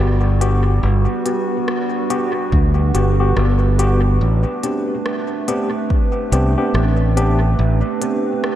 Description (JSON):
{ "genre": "ambient dub", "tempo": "71 BPM", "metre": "4/4", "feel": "swing 60% on 16ths", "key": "A dorian", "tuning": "A4 = 440 Hz", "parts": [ { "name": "warbly tape-like pad", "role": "sustained chords", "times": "0.0-8.6 s", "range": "G3 to B4", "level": "-22 LUFS", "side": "right 2 dB", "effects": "chorus, built-in reverb" }, { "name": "tine electric piano", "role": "stabs", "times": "0.0-8.3 s", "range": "B3 to G4", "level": "-22 LUFS", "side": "left 1 dB", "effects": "medium stereo tremolo, dub echo" }, { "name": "modern bright fingered electric bass", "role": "bass", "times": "0.0-7.8 s", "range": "G1 to D2", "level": "-15 LUFS", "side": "equal", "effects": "none" }, { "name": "organic electronic drum kit", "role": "drums", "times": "0.4-8.6 s", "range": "hi-hat, rim click", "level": "-29 LUFS", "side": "equal", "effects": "overdrive, dub echo" }, { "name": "electronic kick drum", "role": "drums", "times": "2.5-6.1 s", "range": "none", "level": "-17 LUFS", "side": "equal", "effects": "overdrive" } ], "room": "moderate lush hall reverb, RT60 2.2 s", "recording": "dreamy mix soaked in reverb", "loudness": "-15 LUFS", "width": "side -12 dB against mid", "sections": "0.0-8.6 A section", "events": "none", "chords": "0.0 Gmaj7; 4.2 Am11" }